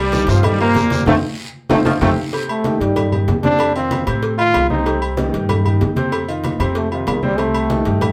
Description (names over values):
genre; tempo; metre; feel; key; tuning
latin, salsa; 190 BPM; 4/4; straight; unclear; A4 = 440 Hz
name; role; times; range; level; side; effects
bright trombone section; melody; 0.0-2.1 s; G2 to F4; -20 LUFS; equal; none
clear grand piano; accompaniment; 0.0-8.1 s; C3 to Eb5; -25 LUFS; equal; none
upright bass; bass; 0.0-8.1 s; C2 to A2; -23 LUFS; equal; none
congas; percussion; 0.1-8.1 s; none; -26 LUFS; equal; none
cowbell; percussion; 0.1-8.1 s; none; -30 LUFS; equal; none
guiro; percussion; 0.1-2.1 s; none; -35 LUFS; equal; none
timbales and agogo bells; percussion; 0.1-8.1 s; none; -26 LUFS; equal; none
clear saxophone section; second line; 1.9-2.3 s; C3 to F3; -28 LUFS; equal; none
bright trombone; melody; 2.5-8.1 s; C3 to F4; -21 LUFS; equal; none
room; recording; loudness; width
wet studio reverb, RT60 0.5 s; band playing live in one room; -17 LUFS; mono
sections
0.0-2.3 A section; 2.3-8.1 B section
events
band accent 1.1-2.3; drum fill 1.7-2.3; trombone solo 2.3-8.1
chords
0.0 Cm7; 1.1 F7(no3); 2.3 Cm; 3.6 F7; 4.9 Cm; 6.1 F5; 7.4 Cm